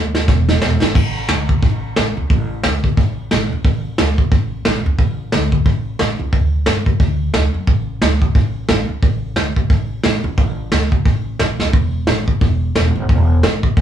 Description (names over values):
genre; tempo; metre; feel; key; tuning
rockabilly; 178 BPM; 4/4; swing 60% on 8ths; unclear; A4 = 440 Hz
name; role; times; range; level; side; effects
upright bass; bass; 0.0-13.8 s; E1 to G2; -19 LUFS; equal; none
vintage brush drum kit; drums; 0.1-13.8 s; crash cymbal, hi-hat, kick drum, snare drum; -15 LUFS; equal; none
room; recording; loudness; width
light reverb; band playing live in one room; -14 LUFS; side -10 dB against mid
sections
1.0-13.8 A section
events
drum fill 0.0-1.0, 11.6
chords
none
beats
0.28 0.62 | 0.95 1.29 1.63 1.96 | 2.30 2.63 2.97 3.31 | 3.64 3.98 4.32 4.65 | 4.99 5.32 5.66 6.00 | 6.33 6.67 7.01 7.34 | 7.68 8.02 8.36 8.70 | 9.03 9.37 9.71 10.05 | 10.38 10.72 11.06 11.40 | 11.74 12.08 12.42 12.76 | 13.09 13.43 13.77